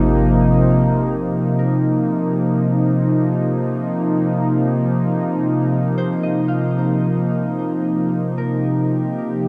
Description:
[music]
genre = ambient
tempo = free time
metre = none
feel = none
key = unclear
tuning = A4 = 440 Hz
[part]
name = warm analog pad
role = sustained chords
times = 0.0-9.5 s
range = C3 to G4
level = -19 LUFS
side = equal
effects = chorus
[part]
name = deep rumbling drone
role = bass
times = 0.0-1.1 s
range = Ab1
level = -26 LUFS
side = equal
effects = built-in reverb
[part]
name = concert harp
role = arpeggios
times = 1.6-9.5 s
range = Bb4 to F5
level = -37 LUFS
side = equal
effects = delay
[sound]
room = wet huge ambient reverb, RT60 8.0 s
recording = none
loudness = -18 LUFS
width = mono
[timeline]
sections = 0.0-1.2 A section; 1.2-9.5 B section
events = fade-in on harp 1.2-9.5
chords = 0.0 Abmaj13; 1.2 Eb69/C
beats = free time

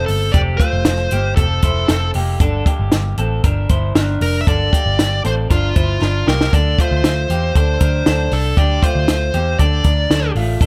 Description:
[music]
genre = jangly indie pop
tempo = 117 BPM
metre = 4/4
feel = straight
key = unclear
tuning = A4 = 440 Hz
[part]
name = dark smooth lead guitar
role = melody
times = 0.0-10.3 s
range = F4 to E5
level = -23 LUFS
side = equal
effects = overdrive, analog delay
[part]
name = electric guitar through a small old amp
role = arpeggios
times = 0.0-10.7 s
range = A3 to C5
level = -26 LUFS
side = equal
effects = analog delay
[part]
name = vintage muted picked electric bass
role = bass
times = 0.0-10.7 s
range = F1 to E2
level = -20 LUFS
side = equal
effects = none
[part]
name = compact cocktail drum kit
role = drums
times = 0.1-10.7 s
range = hi-hat, kick drum, snare drum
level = -19 LUFS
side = equal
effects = none
[sound]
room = light reverb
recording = echo-heavy mix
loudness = -16 LUFS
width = mono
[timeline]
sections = 0.0-10.7 A section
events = drum fill 6.0-6.5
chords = 0.0 Fadd9; 2.4 Gm; 6.5 Dm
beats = | 0.34 0.86 1.37 1.89 | 2.41 2.92 3.44 3.96 | 4.47 4.99 5.50 6.01 | 6.53 7.04 7.55 8.06 | 8.57 9.08 9.59 10.10 | 10.60

